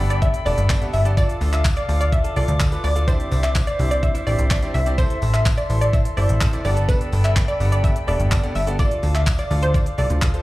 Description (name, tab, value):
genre	dance-pop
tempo	126 BPM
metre	4/4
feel	straight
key	unclear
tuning	A4 = 439 Hz
part	bright grand piano	accompaniment	0.0-10.4 s	B3 to E5	-30 LUFS	equal	slapback echo
part	small flute group	sustained chords	0.0-10.4 s	A4 to D6	-31 LUFS	left 2 dB	sidechain pumping
part	plucky analog bass	bass	0.0-10.4 s	E1 to D2	-20 LUFS	equal	sidechain pumping
part	wide unison pluck	melody	0.1-10.1 s	B4 to E5	-26 LUFS	equal	slapback echo, digital delay
part	direct-recorded clean electric guitar	riff	0.1-10.4 s	G3 to A4	-35 LUFS	right 4 dB	wide subtle chorus, slapback echo
part	pop drum kit	drums	0.1-10.4 s	handclaps, hi-hat, kick drum, shaker	-21 LUFS	equal	none
part	tambourine	percussion	0.5-10.3 s	none	-43 LUFS	left 2 dB	none
room	little or no reverb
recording	live gig heard through the venue's PA, club reverb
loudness	-17 LUFS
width	side -18 dB against mid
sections	0.0-10.4 A section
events	none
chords	0.0 Gadd9; 1.2 Dm; 3.1 Cadd9; 5.0 Am; 6.6 Gadd9; 8.8 Dm